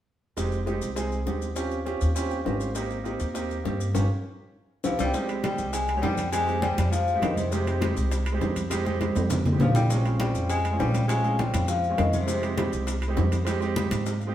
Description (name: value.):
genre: Afro-Cuban jazz.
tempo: 201 BPM.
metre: 4/4.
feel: straight.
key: F minor.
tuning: A4 = 440 Hz.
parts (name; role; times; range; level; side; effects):
clear concert grand piano; accompaniment; 0.4-14.3 s; Ab3 to G5; -30 LUFS; right 3 dB; none.
upright bass; bass; 0.4-14.3 s; F1 to Ab2; -27 LUFS; equal; none.
bongos; percussion; 0.4-14.3 s; none; -34 LUFS; left 3 dB; none.
maracas; percussion; 0.4-14.3 s; none; -42 LUFS; left 4 dB; none.
vibraphone with soft mallets; melody; 4.8-12.7 s; C5 to Ab5; -29 LUFS; left 3 dB; none.
breathy tenor saxophone; second line; 4.8-12.7 s; C3 to Ab3; -33 LUFS; left 1 dB; none.
congas; percussion; 5.1-14.3 s; none; -31 LUFS; left 1 dB; none.
timbales; percussion; 5.3-14.1 s; none; -36 LUFS; right 3 dB; none.
room: wet stone room reverb, RT60 1.2 s.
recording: band playing live in one room.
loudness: -23 LUFS.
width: side -11 dB against mid.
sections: 0.4-5.1 A section; 5.1-14.3 B section.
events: grand piano fill 2.2-2.8, 14.1; band accent 3.9-5.1; drum fill 4.4-5.1, 8.7-9.9.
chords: 0.4 Fm9; 1.6 Eb13; 2.8 Abmaj9; 3.9 Db; 4.5 C; 5.1 Fm9; 9.9 Bbm7; 12.3 Fm9.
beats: | 0.37 0.67 0.97 1.27 | 1.56 1.86 2.16 2.46 | 2.76 3.05 3.35 3.65 | 3.95 4.25 4.54 4.84 | 5.14 5.44 5.74 6.03 | 6.33 6.63 6.93 7.22 | 7.52 7.82 8.12 8.42 | 8.71 9.01 9.31 9.61 | 9.90 10.20 10.50 10.80 | 11.09 11.39 11.69 11.98 | 12.28 12.58 12.88 13.17 | 13.47 13.77 14.06.